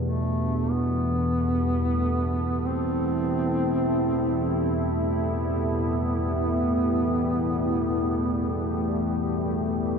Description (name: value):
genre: dark ambient drone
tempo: free time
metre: none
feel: none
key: E minor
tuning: A4 = 439 Hz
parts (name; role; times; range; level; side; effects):
- deep dark ambient pad; sustained chords; 0.0-10.0 s; G3 to A4; -27 LUFS; equal; chorus, built-in reverb
- gamelan-type bronze metallophone; arpeggios; 0.0-4.6 s; none; barely audible; none; none
- analog drone; drone; 0.0-10.0 s; E2 to B2; -27 LUFS; equal; chorus
- dark duduk; melody; 0.1-9.8 s; A3 to C4; -29 LUFS; equal; ping-pong delay
room: wet huge ambient reverb, RT60 8.1 s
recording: dark, warm production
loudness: -23 LUFS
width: side -6 dB against mid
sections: 0.0-10.0 A section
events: none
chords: 0.0 Em